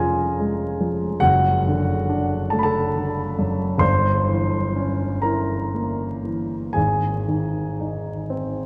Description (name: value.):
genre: classical, romantic nocturne for solo piano.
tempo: 37-50 BPM (dotted quarters).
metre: 6/8.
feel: rubato.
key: unclear.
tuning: A4 = 441 Hz.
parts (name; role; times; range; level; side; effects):
warm baby grand piano; solo; 0.0-8.7 s; F1 to C6; -22 LUFS; equal; none.
room: wet cathedral reverb, RT60 5.3 s.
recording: in a vast, echoing space, vinyl crackle.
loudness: -22 LUFS.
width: mono.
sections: 0.0-8.7 A section.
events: none.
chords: 0.0 Db/F; 1.2 D/F#; 3.8 Gdim7; 6.8 Ab.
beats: | 1.22 2.50 | 3.81 5.23 | 6.75 8.30.